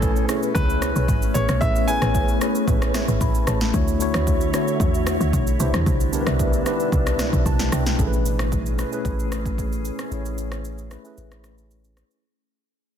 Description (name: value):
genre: amapiano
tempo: 113 BPM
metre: 4/4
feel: straight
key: A major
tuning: A4 = 440 Hz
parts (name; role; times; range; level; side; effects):
- bright grand piano; melody; 0.0-2.9 s; A4 to G#5; -27 LUFS; equal; ping-pong delay
- mellow tine electric piano; accompaniment; 0.0-12.3 s; B2 to B5; -27 LUFS; left 2 dB; medium stereo tremolo, low-pass filter
- glassy FM pad; sustained chords; 0.0-12.2 s; B2 to C#5; -28 LUFS; left 1 dB; ensemble chorus, built-in reverb, low-pass filter
- mellow tonewheel organ; stabs; 0.0-7.9 s; F#4 to G#5; -31 LUFS; right 3 dB; fast rotary speaker, ping-pong delay
- woody log drum bass; bass; 0.0-8.0 s; G#1 to E2; -23 LUFS; equal; none
- deep house drum kit; drums; 0.0-12.2 s; kick drum, rim click, shaker, snare drum; -24 LUFS; equal; soft clipping on snare
- punchy sub bass; bass; 8.0-12.0 s; A1; -27 LUFS; equal; none
room: light reverb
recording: dense, heavily limited modern master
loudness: -19 LUFS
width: side -9 dB against mid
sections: 0.0-8.0 A section; 8.0-12.2 B section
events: tine electric piano fill 2.7-3.7, 7.2-8.0; fade-out 8.0-12.2; filter sweep 8.0-12.2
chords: 0.0 Amaj9; 3.7 Dmaj9; 5.6 Cmaj9; 8.0 Amaj9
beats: 0.02 0.56 1.09 | 1.62 2.15 2.68 3.21 | 3.74 4.27 4.80 5.33 | 5.86 6.39 6.93 7.46 | 7.99 8.52 9.05 9.58 | 10.11 10.64 11.17 11.71